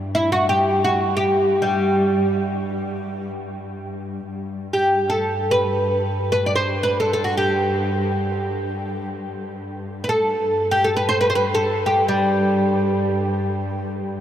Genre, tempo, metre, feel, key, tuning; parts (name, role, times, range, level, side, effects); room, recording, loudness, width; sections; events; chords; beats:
Arabic maqam ensemble; free time; G maqam ajam; A4 = 440 Hz
muted symphonic cello section; drone; 0.0-14.2 s; G2; -27 LUFS; left 1 dB
oud; melody; 0.1-13.9 s; G3 to D5; -19 LUFS; equal
wet huge ambient reverb, RT60 9.0 s; in a vast, echoing space; -18 LUFS; side -10 dB against mid
0.0-4.3 A section; 4.3-14.2 A section
free time